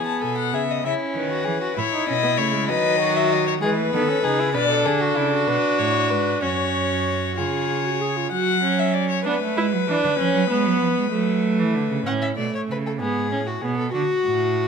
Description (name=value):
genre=classical, baroque-style fugue for string quartet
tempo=64 BPM (dotted quarters)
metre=6/8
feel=straight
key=F# minor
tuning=A4 = 439 Hz
part: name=rich violin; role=melody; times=0.0-12.0 s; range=A4 to A5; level=-24 LUFS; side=left 10 dB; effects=none
part: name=rich violin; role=second line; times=0.0-8.3, 12.1-14.7 s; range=E4 to F#5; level=-26 LUFS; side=left 4 dB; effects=none
part: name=warm viola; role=accompaniment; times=0.0-14.7 s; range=F#3 to G#4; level=-24 LUFS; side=right 2 dB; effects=none
part: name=rich cello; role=bass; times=0.2-14.7 s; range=F#2 to B3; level=-26 LUFS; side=right 7 dB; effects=none
room=moderate recital hall reverb, RT60 1.8 s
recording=close, detailed microphones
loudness=-19 LUFS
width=side -6 dB against mid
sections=0.0-8.3 A section; 8.3-12.1 B section; 12.1-14.7 A section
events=none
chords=0.0 E; 0.8 C#m; 1.8 Amaj9#11; 2.7 B/D#; 3.6 Emaj7; 4.6 G#m7b5/B; 6.4 C#sus4/F#; 7.4 C#; 8.3 F#5; 9.3 Bm; 10.2 C#5; 11.1 F#m; 12.1 F#m/A (rootless); 13.0 Amaj7sus2/G#; 13.9 D (rootless)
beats=| 0.84 1.77 | 2.70 3.63 | 4.55 5.48 | 6.43 7.38 | 8.32 9.26 | 10.19 11.12 | 12.06 13.00 | 13.93